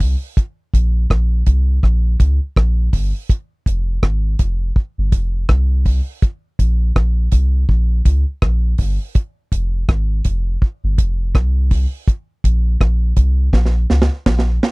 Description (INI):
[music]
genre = roots reggae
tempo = 82 BPM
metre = 4/4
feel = swing 60% on 16ths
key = F minor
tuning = A4 = 439 Hz
[part]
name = soft dub sub bass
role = bass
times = 0.0-14.6 s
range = F1 to Db2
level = -15 LUFS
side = equal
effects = none
[part]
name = deep reggae drum kit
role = drums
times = 0.0-14.7 s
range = hi-hat, kick drum, rim click, snare drum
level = -15 LUFS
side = equal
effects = none
[sound]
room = little or no reverb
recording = dry, close 1970s-style studio recording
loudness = -15 LUFS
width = side -28 dB against mid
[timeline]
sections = 0.0-14.7 A section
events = drum fill 13.5-14.7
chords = none